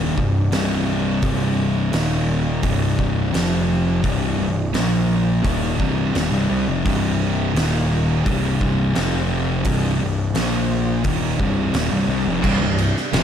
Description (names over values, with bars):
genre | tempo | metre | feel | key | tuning
stoner and doom metal | 86 BPM | 4/4 | straight | C minor | A4 = 440 Hz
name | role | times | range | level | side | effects
tonewheel organ | sustained chords | 0.0-13.2 s | C3 to C5 | -32 LUFS | right 3 dB | none
thick fuzz guitar | riff | 0.0-13.2 s | C2 to Bb3 | -22 LUFS | left 6 dB | distortion
thick fuzz guitar | riff | 0.0-13.2 s | C2 to Bb3 | -24 LUFS | right 10 dB | distortion
fuzz picked electric bass | bass | 0.0-13.2 s | C1 to C2 | -24 LUFS | right 1 dB | overdrive
oversized low-tuned drum kit | drums | 0.2-13.2 s | crash cymbal, hi-hat, kick drum, ride cymbal, snare drum | -25 LUFS | right 1 dB | none
heavy high-gain guitar | riff | 12.4-13.2 s | C2 to F3 | -26 LUFS | right 2 dB | distortion
room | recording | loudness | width
studio reverb | dark, warm production | -17 LUFS | side -8 dB against mid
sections
0.0-12.4 A section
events
none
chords
0.0 Cm; 1.9 Eb5; 2.6 C5; 3.3 F5; 4.0 C5; 4.7 Bb5; 5.4 Cm; 7.5 Eb5; 8.3 C5; 9.0 F5; 9.7 C5; 10.3 Bb5; 11.0 Cm; 12.4 C5